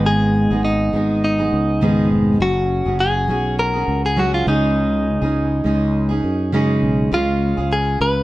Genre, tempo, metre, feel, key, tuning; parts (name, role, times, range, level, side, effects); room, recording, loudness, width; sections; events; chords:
acoustic pop; 102 BPM; 4/4; swing 55% on 16ths; A4 = 440 Hz
direct-recorded clean electric guitar; melody; 0.0-8.2 s; D#4 to B4; -20 LUFS; equal; plate reverb
fingerpicked steel-string acoustic guitar; accompaniment; 0.0-8.2 s; G#2 to G#4; -19 LUFS; right 1 dB
sustaining fretless electric bass; bass; 0.0-8.2 s; E#1 to F#2; -21 LUFS; equal
moderate studio reverb, RT60 0.5 s; -16 LUFS; side -17 dB against mid
0.0-7.1 A section; 7.1-8.2 B section
0.0 G#m; 2.4 F#sus2; 4.5 C#sus2; 7.1 C#